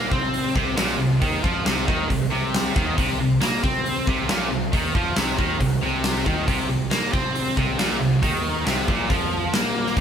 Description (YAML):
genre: hard rock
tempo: 137 BPM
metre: 4/4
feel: straight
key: unclear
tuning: A4 = 441 Hz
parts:
  - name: cranked stack guitar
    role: riff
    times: 0.0-10.0 s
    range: Bb2 to C4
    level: -27 LUFS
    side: left 6 dB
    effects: overdrive, spring reverb
  - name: heavy high-gain guitar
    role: riff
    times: 0.0-10.0 s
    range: Bb2 to C4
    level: -28 LUFS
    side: left 1 dB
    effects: distortion
  - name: high-gain distorted guitar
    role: riff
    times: 0.0-10.0 s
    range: Bb2 to C4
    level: -25 LUFS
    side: right 8 dB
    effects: distortion
  - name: picked electric bass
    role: bass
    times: 0.0-10.0 s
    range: Bb1 to C3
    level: -30 LUFS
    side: equal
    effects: none
  - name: huge arena drum kit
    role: drums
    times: 0.1-10.0 s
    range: hi-hat, kick drum, snare drum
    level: -24 LUFS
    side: equal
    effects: none
room: moderate studio reverb, RT60 0.7 s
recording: band playing live in one room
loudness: -20 LUFS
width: side -8 dB against mid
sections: 0.0-10.0 A section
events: none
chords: 0.0 Bbsus24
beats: 0.34 0.78 | 1.22 1.66 2.10 2.53 | 2.97 3.41 3.85 4.29 | 4.73 5.17 5.60 6.04 | 6.48 6.91 7.35 7.79 | 8.22 8.66 9.10 9.53 | 9.97